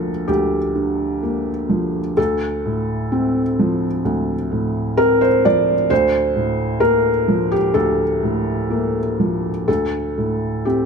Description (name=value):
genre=neoclassical minimalist piano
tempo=61-66 BPM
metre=4/4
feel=rubato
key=D minor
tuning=A4 = 441 Hz
part: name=felt-muted upright piano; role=solo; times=0.0-10.9 s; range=D2 to D5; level=-16 LUFS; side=equal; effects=none
room=light reverb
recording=close, detailed microphones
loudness=-16 LUFS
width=side -5 dB against mid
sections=0.0-10.9 A section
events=none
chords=0.0 Gm7/D; 2.2 Dm7; 5.9 Bbmaj7/D; 9.7 Am7/D